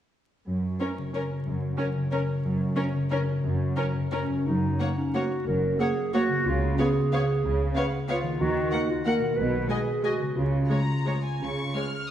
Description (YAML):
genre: classical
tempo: 166-200 BPM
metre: 3/4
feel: rubato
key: F# major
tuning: A4 = 440 Hz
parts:
  - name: concert harp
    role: arpeggios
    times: 0.5-12.1 s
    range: F#2 to C#5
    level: -30 LUFS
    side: left 2 dB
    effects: none
  - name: rich symphonic cello section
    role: bass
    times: 0.5-11.7 s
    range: F#2 to D#3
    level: -30 LUFS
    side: right 2 dB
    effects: none
  - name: dark chamber violin section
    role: melody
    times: 0.8-12.1 s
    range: C#5 to E#6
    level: -37 LUFS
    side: left 3 dB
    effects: none
  - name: rich symphonic violin section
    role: second line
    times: 0.8-11.8 s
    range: A#4 to F#5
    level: -36 LUFS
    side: left 2 dB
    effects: none
  - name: rich symphonic viola section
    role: accompaniment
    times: 0.8-11.8 s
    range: G#3 to C#4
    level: -32 LUFS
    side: right 1 dB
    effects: none
  - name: mellow clarinet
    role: second line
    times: 4.1-12.1 s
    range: C#4 to B4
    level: -28 LUFS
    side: right 1 dB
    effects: none
  - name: clear symphonic double bass section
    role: bass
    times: 4.5-11.7 s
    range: F#1 to D#2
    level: -34 LUFS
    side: right 1 dB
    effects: none
room: wet concert hall reverb, RT60 2.1 s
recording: minimal, uncompressed stereo recording, vinyl crackle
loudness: -24 LUFS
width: side -10 dB against mid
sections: 0.5-4.5 A section; 4.5-12.1 B section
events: none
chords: 0.5 F#; 6.5 C#7; 8.4 D#m; 9.4 G#m7/B; 10.4 C#